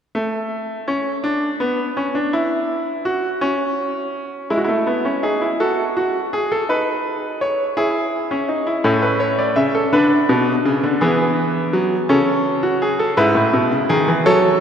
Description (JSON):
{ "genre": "classical, baroque-style 3-part fugue for grand piano", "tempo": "55 BPM (dotted quarters)", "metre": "6/8", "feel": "straight", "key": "unclear", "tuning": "A4 = 440 Hz", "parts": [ { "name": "bright grand piano", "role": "solo", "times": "0.1-14.6 s", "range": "G#2 to E5", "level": "-16 LUFS", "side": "equal", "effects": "none" } ], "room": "wet church reverb, RT60 3.6 s", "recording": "none", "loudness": "-16 LUFS", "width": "side -8 dB against mid", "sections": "0.1-14.6 A section", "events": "none", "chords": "0.1 N.C.; 4.5 E/G#; 5.6 F#m; 6.7 B/D#; 7.8 E; 8.8 A; 9.9 Bm; 11.0 E; 12.1 A/C#; 13.2 E/G#" }